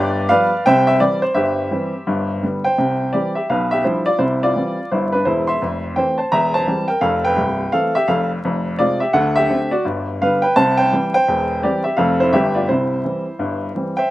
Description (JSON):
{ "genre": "jazz, stride piano", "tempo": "170 BPM", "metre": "4/4", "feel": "swing 62% on 8ths", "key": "C major", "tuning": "A4 = 439 Hz", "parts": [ { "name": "clear upright piano", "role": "solo", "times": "0.0-14.1 s", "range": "C1 to C6", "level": "-16 LUFS", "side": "equal", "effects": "none" } ], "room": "little or no reverb", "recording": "recorded outdoors, with no room sound, vinyl crackle", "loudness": "-15 LUFS", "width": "side -16 dB against mid", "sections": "0.0-2.8 A section; 2.8-14.1 B section", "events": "none", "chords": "0.0 G7; 0.7 C; 1.4 C/G; 2.1 G; 2.8 C; 3.5 G7/B; 4.2 C; 5.6 Fmaj7; 6.3 C7/E; 7.0 Fmaj7; 8.4 Fm; 9.1 D7; 9.9 G; 10.6 C; 11.3 C/E; 12.0 F; 12.3 G; 12.7 C", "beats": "0.30 0.66 1.01 | 1.36 1.71 2.07 2.42 | 2.77 3.13 3.48 3.84 | 4.19 4.54 4.90 5.25 | 5.61 5.96 6.31 6.67 | 7.02 7.38 7.73 8.08 | 8.44 8.79 9.15 9.50 | 9.85 10.21 10.56 10.92 | 11.27 11.62 11.98 12.33 | 12.69 13.04 13.39 13.75 | 14.10" }